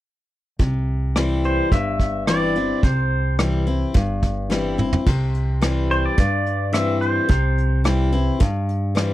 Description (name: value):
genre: honky-tonk and classic country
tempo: 108 BPM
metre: 4/4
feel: straight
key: C major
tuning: A4 = 442 Hz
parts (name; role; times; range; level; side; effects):
- picked steel-string acoustic guitar; accompaniment; 0.6-9.1 s; G2 to E4; -23 LUFS; left 3 dB; none
- upright bass; bass; 0.6-9.1 s; G1 to G2; -22 LUFS; right 1 dB; none
- vintage brush drum kit; drums; 0.6-9.1 s; crash cymbal, hi-hat, kick drum, rim click, snare drum, toms; -19 LUFS; right 1 dB; none
- pedal steel guitar; melody; 1.5-7.8 s; C5 to E5; -23 LUFS; right 1 dB; none
room: little or no reverb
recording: dry, close 1970s-style studio recording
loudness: -18 LUFS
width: side -15 dB against mid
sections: 0.6-5.1 A section; 5.1-9.1 B section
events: drum fill 4.5-5.1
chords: 0.6 C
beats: | 0.60 1.16 1.72 2.27 | 2.83 3.39 3.95 4.50 | 5.06 5.62 6.18 6.74 | 7.29 7.85 8.41 8.97